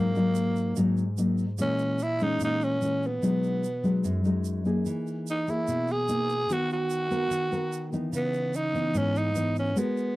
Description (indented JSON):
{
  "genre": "bossa nova",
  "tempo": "147 BPM",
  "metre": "4/4",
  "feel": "straight",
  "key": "unclear",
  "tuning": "A4 = 440 Hz",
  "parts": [
    { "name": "growling tenor saxophone", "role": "melody", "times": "0.0-10.2 s", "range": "A#3 to G#4", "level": "-28 LUFS", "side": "right 1 dB", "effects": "none" },
    { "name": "nylon-string guitar", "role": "accompaniment", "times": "0.0-10.2 s", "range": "F#2 to A#4", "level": "-27 LUFS", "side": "left 1 dB", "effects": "none" },
    { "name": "egg shaker", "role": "percussion", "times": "0.2-10.2 s", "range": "none", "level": "-46 LUFS", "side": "right 12 dB", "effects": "none" }
  ],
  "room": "light reverb",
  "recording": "dry, close 1970s-style studio recording",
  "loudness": "-25 LUFS",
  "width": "side -18 dB against mid",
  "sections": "0.0-10.2 A section",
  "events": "none",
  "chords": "0.0 D#madd11/G#; 1.6 A#m7b5; 3.2 B6; 4.9 Emaj7#11; 6.5 Bmaj7/D#; 8.1 C#m9"
}